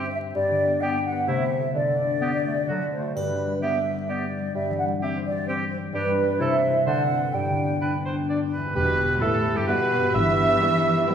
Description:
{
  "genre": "cinematic, playful, whimsical film cue",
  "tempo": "129 BPM",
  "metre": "3/4",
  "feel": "straight",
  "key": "G major",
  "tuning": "A4 = 440 Hz",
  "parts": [
    { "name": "clear clarinet", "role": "second line", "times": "0.0-11.1 s", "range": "F#3 to E5", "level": "-33 LUFS", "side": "right 1 dB", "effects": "none" },
    { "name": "clear oboe", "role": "second line", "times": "0.0-11.1 s", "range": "E4 to E5", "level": "-28 LUFS", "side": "right 2 dB", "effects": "none" },
    { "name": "large flute ensemble", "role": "second line", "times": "0.0-8.3 s", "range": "B4 to G5", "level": "-26 LUFS", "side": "right 2 dB", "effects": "none" },
    { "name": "concert harp", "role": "arpeggios", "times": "0.0-11.1 s", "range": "E2 to D5", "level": "-28 LUFS", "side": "left 3 dB", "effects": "none" },
    { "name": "mellow bassoon", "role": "accompaniment", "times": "0.4-11.1 s", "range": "C3 to G4", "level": "-28 LUFS", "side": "right 1 dB", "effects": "none" },
    { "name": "triangle", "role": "percussion", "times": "3.2-4.1 s", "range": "none", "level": "-48 LUFS", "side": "equal", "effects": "none" },
    { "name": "rich studio violin section", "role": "melody", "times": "8.8-11.1 s", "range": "G4 to E5", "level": "-31 LUFS", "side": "left 3 dB", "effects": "none" },
    { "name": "warm French horn section", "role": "sustained chords", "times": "8.8-11.1 s", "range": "B3 to G4", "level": "-28 LUFS", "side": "left 4 dB", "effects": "none" },
    { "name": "rich studio cello section", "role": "bass", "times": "8.8-11.1 s", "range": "G2 to E3", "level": "-27 LUFS", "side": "right 1 dB", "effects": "none" },
    { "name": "warm studio double bass section", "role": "bass", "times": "8.8-10.5 s", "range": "E1 to G1", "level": "-30 LUFS", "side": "right 2 dB", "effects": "none" },
    { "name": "rich studio violin section", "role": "second line", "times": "9.2-11.1 s", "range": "E4 to B4", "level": "-37 LUFS", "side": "left 2 dB", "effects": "none" },
    { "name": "rich studio viola section", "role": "accompaniment", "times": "9.2-11.1 s", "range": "G3 to B3", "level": "-34 LUFS", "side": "right 2 dB", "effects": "none" }
  ],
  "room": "wet scoring stage reverb, RT60 2.0 s",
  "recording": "minimal, uncompressed stereo recording, vinyl crackle",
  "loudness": "-21 LUFS",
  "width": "side -8 dB against mid",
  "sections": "0.0-8.8 A section; 8.8-11.1 B section",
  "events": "none",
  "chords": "0.4 G; 1.3 Am/C; 1.7 Dsus4; 2.7 D; 3.2 G; 4.5 C/G; 5.9 G; 6.4 Am/C; 6.9 D13; 7.3 G; 8.8 Em; 10.2 Em/G"
}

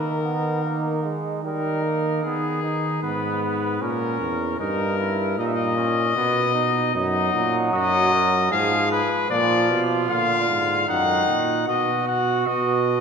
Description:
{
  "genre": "classical, imitative canzona for brass ensemble",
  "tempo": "76 BPM",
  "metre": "3/4",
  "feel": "straight",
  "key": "unclear",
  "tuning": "A4 = 438 Hz",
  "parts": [
    { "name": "clear trumpet", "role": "melody", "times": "0.0-13.0 s", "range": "G#4 to F#5", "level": "-23 LUFS", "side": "left 6 dB", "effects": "none" },
    { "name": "mellow trumpet", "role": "second line", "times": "0.0-13.0 s", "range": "B3 to A#4", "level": "-27 LUFS", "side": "right 6 dB", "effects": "none" },
    { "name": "bright trombone", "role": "accompaniment", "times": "0.0-2.2, 6.9-11.7 s", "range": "D3 to B3", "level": "-27 LUFS", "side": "right 2 dB", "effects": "none" },
    { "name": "mellow bass trombone", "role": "bass", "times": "0.0-13.0 s", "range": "E2 to D#3", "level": "-25 LUFS", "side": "right 2 dB", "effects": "none" }
  ],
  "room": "wet church reverb, RT60 2.7 s",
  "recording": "minimal, uncompressed stereo recording",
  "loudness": "-20 LUFS",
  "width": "side -6 dB against mid",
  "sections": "0.0-2.2 A section; 2.2-11.7 B section; 11.7-13.0 C section",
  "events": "none",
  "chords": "0.0 D#sus4; 1.4 D#; 2.2 G#m/D#; 3.8 A#dim; 4.6 D#/G; 6.2 B; 6.9 D#m/F#; 8.5 Fdim/Ab; 9.3 A#; 10.9 D#m/F#; 11.7 B"
}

